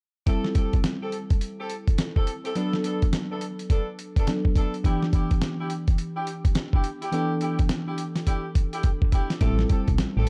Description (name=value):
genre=R&B, new jack swing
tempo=105 BPM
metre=4/4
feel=swing 63% on 16ths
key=E minor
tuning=A4 = 441 Hz
part: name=mellow FM electric piano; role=accompaniment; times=0.3-10.3 s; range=E3 to A4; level=-32 LUFS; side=equal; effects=chorus
part: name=mellow horn section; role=stabs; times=0.3-10.3 s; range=B3 to A4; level=-36 LUFS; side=equal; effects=none
part: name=dusty soul sampler-style drum kit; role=drums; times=0.3-10.3 s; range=hi-hat, kick drum, snare drum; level=-25 LUFS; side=equal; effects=overdrive
part: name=solid FM bass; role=bass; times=9.4-10.3 s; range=A1 to B1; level=-26 LUFS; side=equal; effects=none
room=digital ambience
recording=dark, warm production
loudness=-25 LUFS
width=mono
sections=0.3-9.4 A section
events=drum fill 8.3-9.4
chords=0.3 Am7; 2.6 Bm7; 4.8 Em7; 9.4 Am7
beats=| 0.27 0.84 1.41 1.99 | 2.56 3.13 3.70 4.27 | 4.84 5.41 5.99 6.56 | 7.13 7.70 8.27 8.84 | 9.41 9.98